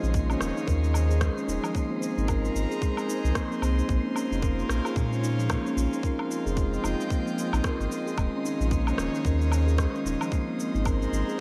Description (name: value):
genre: organic downtempo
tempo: 112 BPM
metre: 4/4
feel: swing 58% on 16ths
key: unclear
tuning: A4 = 438 Hz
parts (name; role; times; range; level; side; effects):
- airy breathy pad; sustained chords; 0.0-11.4 s; Eb3 to G5; -36 LUFS; equal; chorus, sidechain pumping
- steel tongue drum; arpeggios; 0.0-11.4 s; F3 to Bb4; -32 LUFS; equal; low-pass filter, delay
- warm sub bass; bass; 0.0-11.2 s; Eb1 to Bb2; -28 LUFS; equal; none
- electronic shaker, woodblock and rim click; drums; 0.0-11.4 s; none; -38 LUFS; equal; gated reverb
- wind-like tuned noise texture; texture; 0.0-11.4 s; C5 to C6; -43 LUFS; equal; built-in reverb, analog chorus
- electronic kick drum; drums; 0.1-11.0 s; none; -31 LUFS; equal; none
room: moderate lush hall reverb, RT60 1.6 s, studio reverb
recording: bright 1980s-style digital production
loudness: -27 LUFS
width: mono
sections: 0.0-11.4 A section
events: filter sweep on steel tongue drum 0.0-11.4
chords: 0.0 Eb7sus4; 1.7 Abadd9; 3.9 Bbm7; 6.0 Fm7; 8.2 Eb7sus4; 10.3 Abadd9